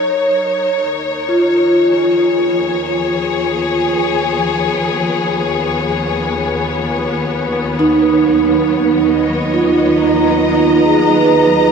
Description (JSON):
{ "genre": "ambient", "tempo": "free time", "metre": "none", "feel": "none", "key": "unclear", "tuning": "A4 = 438 Hz", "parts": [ { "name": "warm studio string section", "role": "sustained chords", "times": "0.0-11.7 s", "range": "Eb2 to A#5", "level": "-16 LUFS", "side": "left 3 dB", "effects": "none" }, { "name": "vibraphone with soft mallets", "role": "arpeggios", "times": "0.0-11.7 s", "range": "D#4 to B4", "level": "-14 LUFS", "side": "right 2 dB", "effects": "ping-pong delay" } ], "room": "wet huge ambient reverb, RT60 9.0 s", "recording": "none", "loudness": "-12 LUFS", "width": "side -6 dB against mid", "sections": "0.0-11.7 A section", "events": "fade-in on string section 0.0-11.7", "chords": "0.0 Ebm7; 0.8 Db7/Eb; 7.8 Bmaj7/D#" }